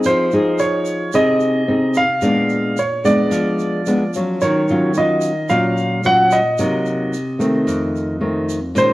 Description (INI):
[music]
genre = bossa nova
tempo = 110 BPM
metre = 4/4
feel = straight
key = unclear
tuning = A4 = 440 Hz
[part]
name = nylon-string guitar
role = accompaniment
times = 0.0-8.9 s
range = F2 to Ab4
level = -17 LUFS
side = equal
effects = none
[part]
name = tube shaker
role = percussion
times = 0.0-8.9 s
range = none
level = -38 LUFS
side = right 6 dB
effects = none
[part]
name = warm grand piano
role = melody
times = 0.1-8.9 s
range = C5 to Gb5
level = -18 LUFS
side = right 1 dB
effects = none
[sound]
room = moderate large studio reverb, RT60 1.3 s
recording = worn, warbling old tape, cassette tape, warbly pitch drift, lossy compression artefacts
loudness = -15 LUFS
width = side -17 dB against mid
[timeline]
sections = 0.0-8.9 A section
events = none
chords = 0.0 Fm7; 2.2 Bb7b9; 4.4 Ebm9; 6.6 Cm7b5; 7.7 F7